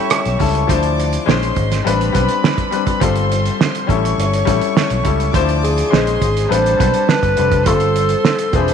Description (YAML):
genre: lush 1970s-style soul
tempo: 103 BPM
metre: 4/4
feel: straight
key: A minor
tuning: A4 = 440 Hz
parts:
  - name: warm studio violin section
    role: second line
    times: 0.0-8.7 s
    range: A4 to D6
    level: -23 LUFS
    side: right 1 dB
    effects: none
  - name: clear baby grand piano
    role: accompaniment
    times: 0.0-8.7 s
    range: E3 to C5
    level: -19 LUFS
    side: left 10 dB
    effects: none
  - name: electric guitar at the edge of break-up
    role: riff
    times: 0.0-0.5 s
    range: E4 to G4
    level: -27 LUFS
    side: right 10 dB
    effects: lush chorus
  - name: cloth-damped thuddy drum kit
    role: drums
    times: 0.1-8.7 s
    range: hi-hat, kick drum, rim click, snare drum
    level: -19 LUFS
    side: right 5 dB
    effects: none
  - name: fingered electric bass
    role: bass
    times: 0.3-8.7 s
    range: E1 to D2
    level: -19 LUFS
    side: equal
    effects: none
  - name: vibraphone with soft mallets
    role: texture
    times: 0.4-0.9, 8.6-8.7 s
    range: E5 to A5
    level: -27 LUFS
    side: left 5 dB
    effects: none
  - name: mellow alto saxophone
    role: melody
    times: 5.6-8.7 s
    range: G#4 to C5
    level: -17 LUFS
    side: right 1 dB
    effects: none
room: light reverb, studio reverb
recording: 1960s-style stereo with parts hard left and right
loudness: -13 LUFS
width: side -7 dB against mid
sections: 0.0-8.7 A section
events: none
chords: 0.0 A7; 0.7 Dm9; 1.3 Bbm11; 1.9 Am11; 3.0 G9sus4; 3.9 A7; 5.3 Dm9; 5.9 Bbm11; 6.5 Am11; 7.7 G9sus4